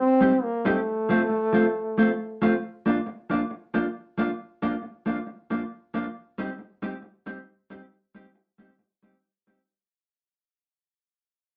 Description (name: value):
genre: ska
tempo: 136 BPM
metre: 4/4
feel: swing 56% on 8ths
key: Bb major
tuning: A4 = 440 Hz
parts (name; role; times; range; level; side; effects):
- clear trombone; melody; 0.0-2.4 s; A3 to C4; -26 LUFS; equal; none
- mellow electric guitar; accompaniment; 0.2-9.6 s; F3 to G4; -26 LUFS; equal; none
room: wet studio ambience, RT60 0.5 s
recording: none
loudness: -26 LUFS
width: mono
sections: 0.0-2.6 A section; 2.6-9.7 B section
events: fade-out 2.6-9.7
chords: 0.0 Cm; 0.9 F; 2.6 Bb; 6.1 Cm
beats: 0.41 | 0.85 1.29 1.73 2.17 | 2.61 3.05 3.49 3.94 | 4.38 4.82 5.26 5.70 | 6.14 6.58 7.02 7.46 | 7.90 8.34 8.78 9.22